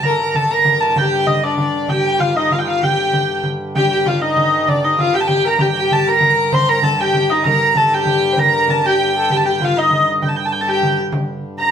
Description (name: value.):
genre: medieval dance.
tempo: 130 BPM (dotted quarters).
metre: 6/8.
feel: straight.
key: G minor.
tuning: A4 = 440 Hz.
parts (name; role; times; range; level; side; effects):
warm hurdy-gurdy; melody; 0.0-11.7 s; D5 to C6; -16 LUFS; right 1 dB; none.
rich fiddle; second line; 0.0-11.0 s; D4 to C5; -19 LUFS; left 2 dB; none.
hand-pumped harmonium; drone; 0.0-11.7 s; G2 to D3; -27 LUFS; equal; none.
frame drum; percussion; 0.0-11.7 s; none; -22 LUFS; equal; none.
room: wet stone room reverb, RT60 1.1 s.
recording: band playing live in one room.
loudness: -13 LUFS.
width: side -8 dB against mid.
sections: 0.0-3.7 A section; 3.7-11.1 A section.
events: none.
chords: none.